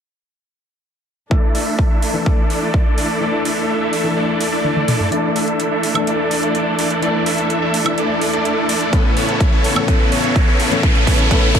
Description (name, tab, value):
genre	EDM, festival progressive house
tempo	126 BPM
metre	4/4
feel	straight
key	unclear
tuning	A4 = 444 Hz
part	dark concert grand piano	accompaniment	1.3-11.6 s	A2 to A4	-24 LUFS	left 5 dB	sidechain pumping, digital delay
part	muted studio string section	sustained chords	1.3-11.6 s	C#3 to A4	-26 LUFS	equal	sidechain pumping
part	supersaw chords	riff	1.3-11.6 s	A3 to E5	-18 LUFS	right 1 dB	sidechain pumping, low-pass filter, digital delay
part	electronic kick drum	drums	1.3-2.8, 8.9-11.6 s	none	-15 LUFS	equal	overdrive
part	big-room dance drum kit	drums	1.5-11.6 s	hi-hat, toms, woodblock	-24 LUFS	right 1 dB	overdrive, high-pass filter on hats, high-pass filter on toms, high-pass filter on perc
part	swell and riser	sound effects	4.4-11.6 s	none	-25 LUFS	right 1 dB	none
room	light reverb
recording	none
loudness	-14 LUFS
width	side -8 dB against mid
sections	1.3-5.1 A section; 5.1-11.6 B section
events	kick drops out 3.2-5.1; drum fill 4.6-5.1, 8.9-11.6; build-up 5.1-11.6; filter sweep on supersaw synth 5.1-11.6; riser 7.5-11.6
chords	1.3 Dsus2; 8.9 Aadd9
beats	| 1.31 1.79 2.26 2.74 | 3.21 3.69 4.17 4.64 | 5.12 5.60 6.07 6.55 | 7.03 7.50 7.98 8.45 | 8.93 9.41 9.88 10.36 | 10.83 11.31